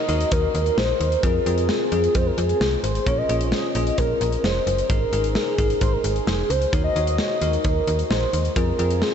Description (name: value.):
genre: synth-pop.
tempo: 131 BPM.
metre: 4/4.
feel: straight.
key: Eb dorian.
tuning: A4 = 440 Hz.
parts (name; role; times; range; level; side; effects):
warm velvety synth lead; melody; 0.0-9.1 s; Ab4 to Eb5; -23 LUFS; equal; chorus, analog delay.
bell-like tine electric piano; accompaniment; 0.0-9.1 s; C4 to Db5; -28 LUFS; left 3 dB; analog chorus.
slap-like FM bass; bass; 0.1-9.0 s; F1 to F2; -24 LUFS; equal; none.
modern studio drum kit; drums; 0.1-9.1 s; hi-hat, kick drum, snare drum; -25 LUFS; equal; none.
room: moderate huge ambient reverb, RT60 7.7 s.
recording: dreamy mix soaked in reverb, nothing above 8.0 kHz.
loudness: -19 LUFS.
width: side -8 dB against mid.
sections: 0.0-9.1 A section.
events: none.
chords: 0.0 Ebm; 1.2 Fm; 3.1 Bbm; 4.9 Absus2; 6.7 Ebm; 8.6 Fm.